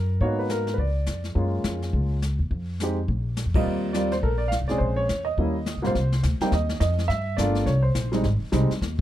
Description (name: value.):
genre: jazz piano trio.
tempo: 209 BPM.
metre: 4/4.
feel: swing 61% on 8ths.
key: unclear.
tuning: A4 = 440 Hz.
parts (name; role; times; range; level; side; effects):
warm baby grand piano; melody; 0.0-8.7 s; Ab2 to G5; -26 LUFS; right 1 dB; none.
upright bass; bass; 0.0-9.0 s; G1 to Bb2; -25 LUFS; equal; none.
jazz brush drum kit; drums; 0.2-9.0 s; brushed snare drum, hi-hat, kick drum, ride cymbal, snare drum; -30 LUFS; left 2 dB; none.
room: little or no reverb.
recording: dark, warm production.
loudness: -22 LUFS.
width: side -13 dB against mid.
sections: 0.0-6.0 A section; 6.0-9.0 B section.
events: band accent 3.5.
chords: 0.2 Abm9; 0.8 Db; 1.4 Gbmaj9; 2.5 Fm7; 3.1 Bb5; 3.7 Eb69; 4.8 Bbm7; 5.4 Eb7b9; 6.0 Cmadd9; 7.1 Gm7; 7.7 C5; 8.2 Abmaj7.